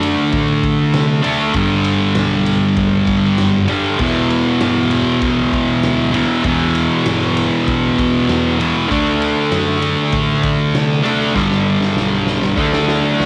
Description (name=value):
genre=garage rock duo or trio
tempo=98 BPM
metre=4/4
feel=straight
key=E minor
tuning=A4 = 440 Hz
part: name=thick fuzz guitar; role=riff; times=0.0-13.3 s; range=E2 to D4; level=-16 LUFS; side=equal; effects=distortion, cassette tape
part: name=hollow-body short-scale picked electric bass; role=bass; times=0.0-13.3 s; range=E1 to C3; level=-28 LUFS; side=equal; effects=none
part: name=raw garage drum kit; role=drums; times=0.0-13.3 s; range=crash cymbal, kick drum, ride cymbal, snare drum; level=-26 LUFS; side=equal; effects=cassette tape
room=light reverb, small room reverb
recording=home recording on cassette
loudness=-16 LUFS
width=mono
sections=0.0-13.3 A section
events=drum fill 11.4-13.3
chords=0.0 D5; 1.6 G; 4.0 Em; 8.9 D; 11.4 G; 12.6 D5